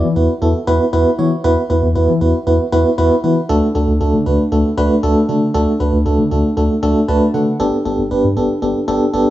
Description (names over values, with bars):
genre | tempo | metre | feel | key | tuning
synth-pop | 117 BPM | 4/4 | straight | unclear | A4 = 440 Hz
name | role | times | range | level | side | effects
FM electric piano with tremolo | accompaniment | 0.0-9.3 s | A3 to A5 | -14 LUFS | equal | none
round analog bass | bass | 0.0-9.3 s | G1 to E3 | -18 LUFS | left 1 dB | none
room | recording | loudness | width
wet recital hall reverb, RT60 1.6 s | small room ambience | -13 LUFS | side -14 dB against mid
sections
0.0-9.3 A section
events
FM electric piano fill 6.8-7.6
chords
0.0 Esus2; 3.5 D; 7.6 Gadd9